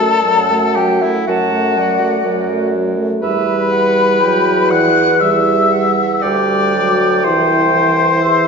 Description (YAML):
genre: classical, slow romantic movement for wind quintet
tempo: 60 BPM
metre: 4/4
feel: rubato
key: unclear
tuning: A4 = 440 Hz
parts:
  - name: mellow hollow concert flute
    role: melody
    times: 0.0-8.5 s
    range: E5 to F#6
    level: -17 LUFS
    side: left 6 dB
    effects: none
  - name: clear oboe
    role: second line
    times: 0.0-8.5 s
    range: E4 to F#5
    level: -19 LUFS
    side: left 2 dB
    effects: none
  - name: mellow French horn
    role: accompaniment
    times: 0.0-8.5 s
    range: E3 to A3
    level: -19 LUFS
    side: equal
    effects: none
  - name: mellow clarinet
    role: accompaniment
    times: 0.0-8.5 s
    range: D5 to A5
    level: -20 LUFS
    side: right 7 dB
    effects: none
  - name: mellow bassoon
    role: bass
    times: 0.0-8.5 s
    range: C2 to F#2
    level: -18 LUFS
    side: right 3 dB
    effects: none
room: wet recital hall reverb, RT60 1.6 s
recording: heard from further back in the room, nothing above 7.5 kHz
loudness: -12 LUFS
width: side -5 dB against mid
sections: 0.0-8.5 A section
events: none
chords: 0.0 D/F#; 3.2 Em7; 7.2 C